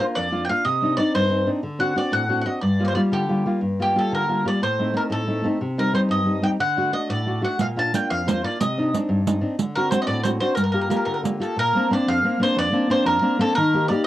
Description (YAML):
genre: italian folk, Italian serenade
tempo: 121 BPM (dotted quarters)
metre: 6/8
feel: rubato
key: G minor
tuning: A4 = 440 Hz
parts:
  - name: bowl-back mandolin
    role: melody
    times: 0.0-14.1 s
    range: G4 to A5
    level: -23 LUFS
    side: equal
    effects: cassette tape
  - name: nylon-string guitar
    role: accompaniment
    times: 0.0-14.1 s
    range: F2 to G4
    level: -22 LUFS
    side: equal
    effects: cassette tape
  - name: riq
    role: percussion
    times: 7.6-11.5 s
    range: none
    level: -24 LUFS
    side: right 5 dB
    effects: none
room: moderate booth ambience, RT60 0.2 s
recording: home recording on cassette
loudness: -19 LUFS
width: side -14 dB against mid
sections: 0.0-3.6 A section; 3.6-11.6 A section; 11.6-14.1 B section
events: none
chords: 0.0 Bb; 0.7 Cmadd9; 1.6 D7; 2.6 Gm7; 4.6 Adim; 5.6 Cm; 6.6 D; 7.6 Bb; 8.6 Cmadd9; 9.6 D7; 10.6 Gm7; 11.6 Bbadd9; 13.6 Eb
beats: 0.17 | 0.66 1.14 | 1.63 2.12 | 2.61 3.12 | 3.62 4.12 | 4.62 5.11 | 5.61 6.10 | 6.59 7.09 | 7.60 8.10 | 8.60 9.09 | 9.59 10.08 | 10.57 11.07 | 11.57 12.07 | 12.57 13.06 | 13.56 14.05